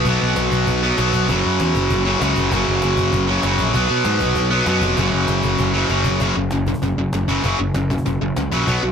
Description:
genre	punk rock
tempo	195 BPM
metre	4/4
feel	straight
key	unclear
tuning	A4 = 440 Hz
part	distorted electric guitar	riff	0.0-8.9 s	F#2 to B3	-18 LUFS	equal	overdrive
part	fuzz picked electric bass	bass	0.0-8.9 s	E#1 to B2	-21 LUFS	equal	overdrive
part	cajon	drums	0.1-8.7 s	none	-28 LUFS	equal	none
room	little or no reverb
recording	none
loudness	-16 LUFS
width	side -7 dB against mid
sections	0.0-6.2 A section; 6.2-8.9 B section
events	drum fill 5.9-6.2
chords	0.0 B5; 1.3 F#5; 3.7 B5; 5.0 F#5

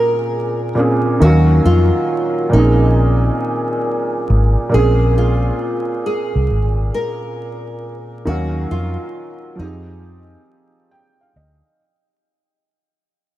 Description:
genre	lo-fi hip hop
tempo	68 BPM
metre	4/4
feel	swing 66% on 16ths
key	Bb minor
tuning	A4 = 442 Hz
part	nylon-string guitar	melody	0.0-11.2 s	Eb4 to Bb4	-22 LUFS	right 1 dB	analog chorus, analog delay
part	felt-muted upright piano	accompaniment	0.0-11.8 s	Bb2 to G5	-19 LUFS	right 1 dB	cassette tape
part	vintage muted fingered electric bass	bass	1.2-11.6 s	Ab1 to F2	-14 LUFS	equal	none
room	moderate huge ambient reverb, RT60 4.5 s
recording	dreamy mix soaked in reverb, vinyl crackle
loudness	-14 LUFS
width	side -14 dB against mid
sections	0.0-4.7 A section; 4.7-11.8 B section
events	fade-out 4.7-11.8; felt piano fill 10.5-11.8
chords	0.0 Bbm9; 1.2 Ebm9; 2.5 Bbm9; 8.3 Ebm9; 9.6 Fm9

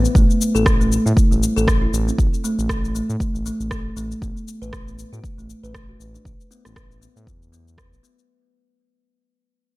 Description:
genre	afro house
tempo	118 BPM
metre	4/4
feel	swing 56% on 16ths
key	unclear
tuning	A4 = 440 Hz
part	kalimba	arpeggios	0.0-8.2 s	E3 to B4	-23 LUFS	equal	sidechain pumping, tape echo
part	smooth synth bass	bass	0.0-8.0 s	A1 to A2	-23 LUFS	equal	sidechain pumping
part	electronic kick drum	drums	0.1-7.9 s	none	-18 LUFS	equal	none
part	electronic shaker and rim click	drums	0.1-8.3 s	none	-27 LUFS	left 1 dB	none
room	light reverb, digital ambience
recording	none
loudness	-17 LUFS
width	side -20 dB against mid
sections	0.0-8.3 A section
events	fade-out 0.0-8.3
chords	none

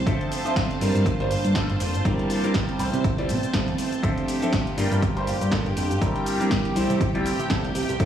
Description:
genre	filtered disco house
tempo	121 BPM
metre	4/4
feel	swing 57% on 16ths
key	unclear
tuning	A4 = 440 Hz
part	string machine, full ensemble	sustained chords	0.0-8.1 s	G4 to A5	-31 LUFS	equal	ensemble chorus, sidechain pumping, low-pass filter
part	electric guitar at the edge of break-up	riff	0.0-8.1 s	E3 to G4	-31 LUFS	right 2 dB	sidechain pumping, low-pass filter
part	fat analog bass	bass	0.0-8.1 s	F1 to C3	-26 LUFS	equal	tube saturation, sidechain pumping, low-pass filter
part	clear grand piano	accompaniment	0.1-8.1 s	F3 to E5	-27 LUFS	equal	phaser, sidechain pumping, low-pass filter
part	electronic kick drum	drums	0.1-8.1 s	none	-26 LUFS	equal	none
part	house drum kit	drums	0.1-8.1 s	hi-hat, shaker, snare drum	-32 LUFS	equal	sidechain pumping on hats, sidechain pumping on cymbals, sidechain pumping on perc
room	moderate echo chamber reverb, RT60 1.9 s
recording	played on a big sound system in a bare room, large studio reverb, studio ambience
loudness	-21 LUFS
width	side -10 dB against mid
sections	0.0-8.1 A section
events	none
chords	0.1 Dm7; 1.1 Gm7; 2.1 C7; 2.8 Fmaj7/C; 4.0 Dm7; 5.0 Gm7; 6.0 C7; 6.8 Fmaj7/C

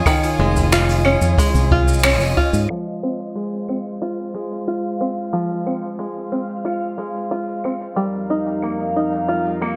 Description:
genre	folktronica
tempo	91 BPM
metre	4/4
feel	straight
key	F minor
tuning	A4 = 437 Hz
part	warm string quartet	sustained chords	0.0-9.8 s	F2 to Eb6	-29 LUFS	equal	none
part	open-back banjo	arpeggios	0.0-9.8 s	Eb3 to F4	-24 LUFS	equal	low-pass filter, delay
part	backwards swelling texture	texture	0.0-9.8 s	Eb5 to F5	-32 LUFS	equal	built-in reverb
part	jazz brush drum kit	drums	0.1-9.8 s	claves, finger snaps, hi-hat, shaker	-25 LUFS	equal	none
part	kick drum	drums	0.1-2.5 s	none	-22 LUFS	equal	none
part	fingered electric bass	bass	0.4-2.7 s	F1 to Ab2	-20 LUFS	equal	tube saturation
room	light reverb, studio reverb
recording	low-pass filter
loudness	-20 LUFS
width	mono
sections	0.0-2.7 A section; 2.7-9.8 B section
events	band accent 2.0-2.4; filter sweep on five-string banjo 2.7-9.8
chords	0.0 Dbadd9/F; 2.7 Fm; 8.0 Ebadd9/F

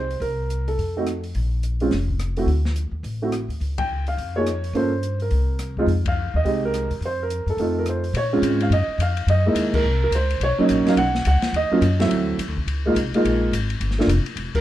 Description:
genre	jazz piano trio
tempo	212 BPM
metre	4/4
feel	swing 61% on 8ths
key	Bb minor from 8.1 s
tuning	A4 = 442 Hz
part	dark upright piano	melody	0.0-14.6 s	F#3 to G5	-21 LUFS	right 2 dB	plate reverb
part	upright bass	bass	0.0-14.6 s	E1 to Bb2	-23 LUFS	left 1 dB	none
part	open jazz drum kit	drums	0.1-14.6 s	crash cymbal, hi-hat, kick drum, ride cymbal, rim click, snare drum	-30 LUFS	left 3 dB	none
room	light reverb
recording	dark, warm production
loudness	-19 LUFS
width	side -13 dB against mid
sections	0.0-8.1 A section; 8.1-14.6 B section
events	band accent 3.8, 6.0, 9.7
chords	0.2 Bbsus2/C; 0.8 F; 1.3 Bb5; 2.5 D5; 3.6 Db; 4.7 Gm7b5; 5.3 C7(no3); 5.9 Fm9; 7.6 F7; 8.1 Bbm9; 9.3 Gb13; 10.4 Bmaj9; 11.5 Ebm; 12.1 D9; 12.7 Db69; 13.8 G7(no3)

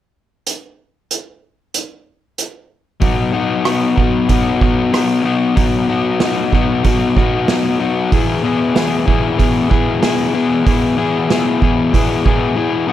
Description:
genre	classic rock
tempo	94 BPM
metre	4/4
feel	straight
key	B major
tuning	A4 = 439 Hz
part	vintage drum kit	drums	0.5-12.4 s	hi-hat, kick drum, rim click, snare drum	-17 LUFS	right 2 dB	none
part	overdriven semi-hollow guitar	riff	3.0-12.9 s	E2 to G#4	-15 LUFS	left 4 dB	none
room	moderate studio reverb, RT60 0.9 s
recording	none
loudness	-13 LUFS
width	side -12 dB against mid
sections	0.5-3.0 A section; 3.0-12.9 B section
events	break 12.6-12.9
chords	0.5 N.C.; 3.0 B; 8.1 E

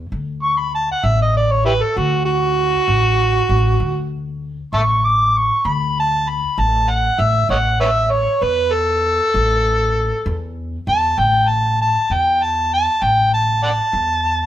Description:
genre	acoustic country blues, solo or duo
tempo	65 BPM (dotted quarters)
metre	12/8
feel	straight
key	A mixolydian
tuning	A4 = 440 Hz
part	upright bass	bass	0.0-14.4 s	A1 to E2	-20 LUFS	left 1 dB	none
part	overdriven harmonica	melody	0.4-14.5 s	E4 to D6	-16 LUFS	right 1 dB	none
room	light reverb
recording	band playing live in one room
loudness	-15 LUFS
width	side -12 dB against mid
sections	0.0-14.5 A section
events	harmonica solo 0.0-14.5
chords	0.1 D; 7.5 A5

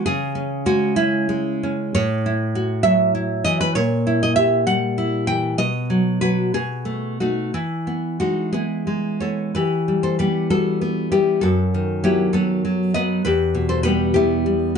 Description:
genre	romantic piece for solo classical guitar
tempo	58-68 BPM (dotted quarters)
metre	6/8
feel	rubato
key	E major, E minor from 9.6 s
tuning	A4 = 440 Hz
part	nylon-string guitar	solo	0.0-14.8 s	E2 to G5	-18 LUFS	equal	none
room	light reverb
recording	dark, warm production, nothing above 10.6 kHz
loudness	-18 LUFS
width	side -6 dB against mid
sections	0.0-9.6 A section; 9.6-14.8 B section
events	none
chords	0.1 C#m; 1.9 F#m7/A; 3.8 A#dim7; 5.6 B; 6.5 B7; 7.5 E; 9.6 Em; 11.4 B7/F#; 13.2 Em

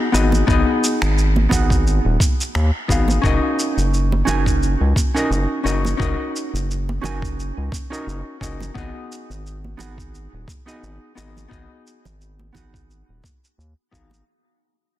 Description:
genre	sunset chillout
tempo	87 BPM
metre	4/4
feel	swing 56% on 16ths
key	G# minor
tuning	A4 = 440 Hz
part	hollow-body jazz guitar	accompaniment	0.0-14.2 s	B3 to G#5	-22 LUFS	moving between left 4 dB and right 6 dB	auto-pan, vintage 12-bit sampler grit, tape echo
part	round analog bass	bass	0.1-14.2 s	D#1 to D#2	-20 LUFS	equal	none
part	electronic shaker and finger snaps	drums	0.1-14.2 s	none	-28 LUFS	right 1 dB	studio reverb, soft clipping on snare
part	congas	percussion	0.3-14.2 s	none	-28 LUFS	right 4 dB	none
part	electronic kick drum	drums	0.5-14.1 s	none	-21 LUFS	equal	studio reverb
room	light reverb, digital ambience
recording	dense, heavily limited modern master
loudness	-17 LUFS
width	side -14 dB against mid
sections	0.0-14.3 A section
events	fade-out 0.0-14.3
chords	0.0 G#m7; 3.2 F#6; 8.8 G#m7

